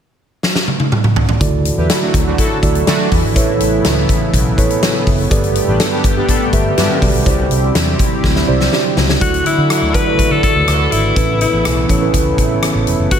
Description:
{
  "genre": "1980s-style pop",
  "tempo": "123 BPM",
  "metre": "4/4",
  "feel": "straight",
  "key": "D major",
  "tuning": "A4 = 439 Hz",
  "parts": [
    { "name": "huge arena drum kit", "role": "drums", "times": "0.4-13.2 s", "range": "hi-hat, kick drum, rim click, snare drum, toms", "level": "-16 LUFS", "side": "equal", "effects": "none" },
    { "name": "mellow tine electric piano", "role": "accompaniment", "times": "1.4-13.2 s", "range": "G2 to E5", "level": "-18 LUFS", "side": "right 3 dB", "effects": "slow stereo tremolo" },
    { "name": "chorused pulse-width pad", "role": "sustained chords", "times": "1.4-13.2 s", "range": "C#3 to G4", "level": "-21 LUFS", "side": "equal", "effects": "none" },
    { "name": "vintage muted fingered electric bass", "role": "bass", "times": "1.4-13.2 s", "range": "F1 to D3", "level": "-18 LUFS", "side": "equal", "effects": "none" },
    { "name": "analog synth brass", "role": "stabs", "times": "1.8-7.0 s", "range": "A3 to B4", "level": "-22 LUFS", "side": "left 1 dB", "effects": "chorus, diffuse ambient delay" },
    { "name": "bright alto saxophone", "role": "melody", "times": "9.2-13.2 s", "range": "E4 to B4", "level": "-17 LUFS", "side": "left 4 dB", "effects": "diffuse ambient delay" }
  ],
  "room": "moderate lush hall reverb, RT60 1.9 s, studio reverb",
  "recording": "dreamy mix soaked in reverb",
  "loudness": "-12 LUFS",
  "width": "side -8 dB against mid",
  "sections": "0.0-1.4 A section; 1.4-9.2 B section; 9.2-13.2 C section",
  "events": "drum fill 0.4-1.4, 8.2-9.2",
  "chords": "0.0 N.C.; 1.4 Dadd9; 3.4 Aadd9; 5.3 Gadd9; 7.3 Cadd9; 9.2 Dadd9; 11.2 Aadd9"
}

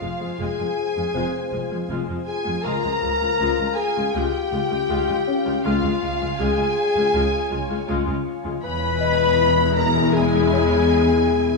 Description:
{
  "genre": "cinematic",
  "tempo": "80 BPM",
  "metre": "4/4",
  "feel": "straight",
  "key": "unclear",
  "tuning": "A4 = 439 Hz",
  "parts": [
    { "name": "muted studio violin section", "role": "melody", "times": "0.0-11.6 s", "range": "F5 to B5", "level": "-29 LUFS", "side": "left 1 dB", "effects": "none" },
    { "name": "dark clarinet", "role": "second line", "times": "0.0-11.6 s", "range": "F4 to B4", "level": "-23 LUFS", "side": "left 6 dB", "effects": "none" },
    { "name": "muted chamber violin section", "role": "second line", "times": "0.0-11.6 s", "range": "F5 to B5", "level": "-29 LUFS", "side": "right 1 dB", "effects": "none" },
    { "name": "muted symphonic viola section", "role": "accompaniment", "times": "0.0-11.6 s", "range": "Ab3 to F4", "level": "-28 LUFS", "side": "left 3 dB", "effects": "none" },
    { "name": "glassy FM pad", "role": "sustained chords", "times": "0.0-11.6 s", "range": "B3 to Ab5", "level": "-29 LUFS", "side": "left 4 dB", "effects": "ensemble chorus, built-in reverb, phaser" },
    { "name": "muted studio cello section", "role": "bass", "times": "0.0-11.6 s", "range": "Db2 to F2", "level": "-27 LUFS", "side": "equal", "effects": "none" },
    { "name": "muted symphonic double bass section", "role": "bass", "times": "0.0-11.6 s", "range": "E1 to Db2", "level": "-29 LUFS", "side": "right 2 dB", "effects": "none" },
    { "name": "small celesta", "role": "texture", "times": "0.0-11.6 s", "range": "C4 to Eb5", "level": "-30 LUFS", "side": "left 2 dB", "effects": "none" }
  ],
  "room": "moderate scoring stage reverb, RT60 1.6 s",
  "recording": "small room ambience",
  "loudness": "-19 LUFS",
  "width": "side -2 dB against mid",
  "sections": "0.0-11.6 A section",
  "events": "none",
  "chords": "0.0 Fm; 2.6 Db; 8.6 E"
}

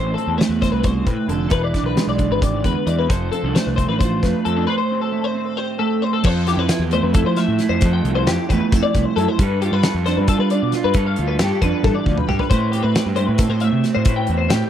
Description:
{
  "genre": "math rock and midwest emo",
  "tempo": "268 BPM (eighths)",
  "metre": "7/8",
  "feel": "straight",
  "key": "A minor",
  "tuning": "A4 = 440 Hz",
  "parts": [
    { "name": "electric guitar through a small old amp", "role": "accompaniment", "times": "0.0-14.7 s", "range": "A2 to C5", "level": "-22 LUFS", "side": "right 6 dB", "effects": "none" },
    { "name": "twelve-string electric guitar", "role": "arpeggios", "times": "0.0-14.7 s", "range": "G4 to G5", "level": "-23 LUFS", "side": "left 9 dB", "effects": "ensemble chorus" },
    { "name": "fuzz picked electric bass", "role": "bass", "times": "0.0-14.6 s", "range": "E1 to G3", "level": "-21 LUFS", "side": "equal", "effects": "overdrive" },
    { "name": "loose indie drum kit", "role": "drums", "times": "0.2-14.6 s", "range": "crash cymbal, hi-hat, kick drum, snare drum, toms", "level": "-20 LUFS", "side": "equal", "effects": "none" }
  ],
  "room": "studio reverb",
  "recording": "dry, close 1970s-style studio recording",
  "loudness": "-16 LUFS",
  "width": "side -10 dB against mid",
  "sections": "0.0-6.2 A section; 6.2-14.7 B section",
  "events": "drum fill 11.8-12.5",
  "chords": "0.0 Am; 1.5 E7; 3.1 F6; 4.7 Am7; 6.2 Fmaj9; 9.4 G9; 12.5 Am9"
}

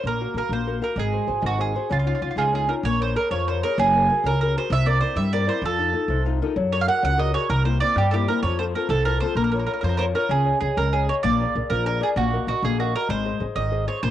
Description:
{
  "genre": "italian folk",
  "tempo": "129 BPM (dotted quarters)",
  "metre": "6/8",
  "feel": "straight",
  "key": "Bb minor",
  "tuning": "A4 = 441 Hz",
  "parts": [
    { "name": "mandolin", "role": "melody", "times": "0.0-14.1 s", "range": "F4 to Gb5", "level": "-24 LUFS", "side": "right 5 dB", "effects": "cassette tape" },
    { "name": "nylon-string guitar", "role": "accompaniment", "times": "0.0-14.1 s", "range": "C3 to F5", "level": "-26 LUFS", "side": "left 7 dB", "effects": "cassette tape" },
    { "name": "upright bass", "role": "bass", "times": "0.0-14.1 s", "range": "Gb1 to G2", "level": "-24 LUFS", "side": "equal", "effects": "transformer saturation" }
  ],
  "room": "wet spring reverb, RT60 1.2 s, small room ambience",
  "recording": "home recording on cassette",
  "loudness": "-20 LUFS",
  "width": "side -12 dB against mid",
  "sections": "0.0-2.8 A section; 2.8-10.3 B section; 10.3-14.1 A section",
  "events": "nylon-string guitar fill 6.1-6.6",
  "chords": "0.1 Gbmaj7/Bb; 1.0 Ab7; 1.9 Dbadd9; 2.8 Bbm7; 3.8 Gbadd9; 4.7 C7; 5.6 F7; 6.6 Gbadd9; 7.5 C7; 8.4 F; 9.4 Bbm; 10.3 Dbsus2; 11.2 Bb7; 12.2 Ebm/Bb; 13.1 Ab"
}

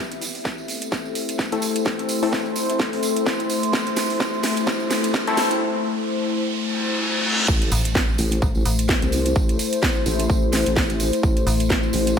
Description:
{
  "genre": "bass house",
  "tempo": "128 BPM",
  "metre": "4/4",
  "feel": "swing 57% on 16ths",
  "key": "A minor",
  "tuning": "A4 = 440 Hz",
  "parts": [
    { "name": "sweeping resonant pad", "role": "sustained chords", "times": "0.0-12.2 s", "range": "A3 to C5", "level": "-25 LUFS", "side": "left 3 dB", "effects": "chorus, sidechain pumping" },
    { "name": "riser, reverse cymbal and impact", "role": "sound effects", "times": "1.3-9.4 s", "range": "none", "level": "-28 LUFS", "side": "equal", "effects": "none" },
    { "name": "warbly tape-like pad", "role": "texture", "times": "0.0-5.6 s", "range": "C4 to C6", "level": "-29 LUFS", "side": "left 1 dB", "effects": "chorus, built-in reverb, sidechain pumping" },
    { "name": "house drum kit", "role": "drums", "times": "0.1-12.2 s", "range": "crash cymbal, hi-hat, snare drum", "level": "-26 LUFS", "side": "right 1 dB", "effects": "studio reverb" },
    { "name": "tambourine", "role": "percussion", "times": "0.1-12.2 s", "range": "none", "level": "-32 LUFS", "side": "right 5 dB", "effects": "none" },
    { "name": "electronic kick drum", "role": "drums", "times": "0.5-12.2 s", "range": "none", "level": "-23 LUFS", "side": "equal", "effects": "overdrive, high-pass filter on kick, studio reverb" },
    { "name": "band-passed chord stab", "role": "stabs", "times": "1.5-2.3, 5.3-5.6 s", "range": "A3 to A4", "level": "-26 LUFS", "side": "left 3 dB", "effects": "chorus, sidechain pumping, diffuse ambient delay" },
    { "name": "vowel-sweep wobble bass", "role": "bass", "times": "7.5-12.2 s", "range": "A1 to C2", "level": "-23 LUFS", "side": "equal", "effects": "chorus, overdrive, sidechain pumping" },
    { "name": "metallic FM bass", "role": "bass", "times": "7.7-12.2 s", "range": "A1", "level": "-23 LUFS", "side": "equal", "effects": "overdrive, sidechain pumping" }
  ],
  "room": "moderate plate reverb, RT60 1.6 s",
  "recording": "dreamy mix soaked in reverb",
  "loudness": "-19 LUFS",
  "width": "side -7 dB against mid",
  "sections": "0.0-7.5 A section; 7.5-12.2 B section",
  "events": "build-up 0.0-7.5; drum fill 0.0-5.6; filter sweep on synth stab 0.0-7.5; riser 1.3-7.5; reverse cymbal 6.5-7.5; drop 7.5-12.2; impact 7.5-9.4",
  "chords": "0.0 Am"
}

